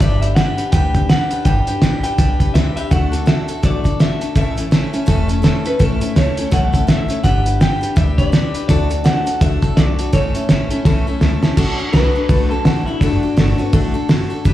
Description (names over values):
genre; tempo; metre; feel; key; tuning
rockabilly; 166 BPM; 4/4; swing 59% on 8ths; D major; A4 = 440 Hz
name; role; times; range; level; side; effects
electric guitar through a small old amp; melody; 0.0-13.7 s; D4 to G5; -23 LUFS; left 1 dB; spring reverb, plate reverb, slapback echo, analog delay
picked steel-string acoustic guitar; accompaniment; 0.0-14.5 s; A2 to B4; -22 LUFS; left 3 dB; plate reverb, slapback echo
upright bass; bass; 0.0-14.5 s; E1 to D2; -19 LUFS; equal; none
cloth-damped thuddy drum kit; drums; 0.0-14.5 s; crash cymbal, hi-hat, kick drum, snare drum; -16 LUFS; equal; none
room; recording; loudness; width
light reverb; live gig heard through the venue's PA, club reverb; -13 LUFS; side -14 dB against mid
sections
0.0-11.6 A section; 11.6-14.5 B section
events
drum fill 10.9-11.6; clean electric guitar solo 11.6-14.5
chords
0.0 G; 2.9 D; 4.4 A; 7.2 G; 8.7 D; 10.1 A; 11.6 D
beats
| 0.01 0.37 0.73 1.10 | 1.46 1.82 2.18 2.55 | 2.91 3.27 3.63 4.00 | 4.36 4.72 5.08 5.44 | 5.80 6.17 6.53 6.89 | 7.25 7.61 7.97 8.33 | 8.69 9.05 9.41 9.77 | 10.13 10.49 10.85 11.21 | 11.57 11.93 12.29 12.65 | 13.01 13.37 13.73 14.09 | 14.45